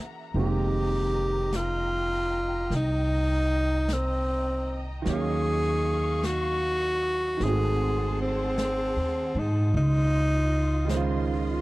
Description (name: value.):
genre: jazz ballad.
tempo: 51 BPM.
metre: 4/4.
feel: swing 67% on 8ths.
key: unclear.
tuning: A4 = 440 Hz.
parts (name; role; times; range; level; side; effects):
clear baby grand piano; accompaniment; 0.0-11.6 s; Db3 to F5; -33 LUFS; right 5 dB; none.
warm studio string section; sustained chords; 0.0-11.6 s; F4 to Db6; -39 LUFS; left 2 dB; none.
upright bass; bass; 0.3-11.6 s; F1 to Ab2; -27 LUFS; equal; none.
breathy tenor saxophone; melody; 0.4-11.3 s; C4 to Ab4; -27 LUFS; equal; none.
jazz brush drum kit; drums; 0.4-11.6 s; brushed snare drum, hi-hat, snare drum; -39 LUFS; equal; none.
room: little or no reverb.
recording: dry, close 1970s-style studio recording.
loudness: -24 LUFS.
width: side -19 dB against mid.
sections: 0.0-11.6 A section.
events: none.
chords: 0.4 Fm11; 5.1 Ebm9; 7.4 Ab7b9; 9.7 Dbmaj9.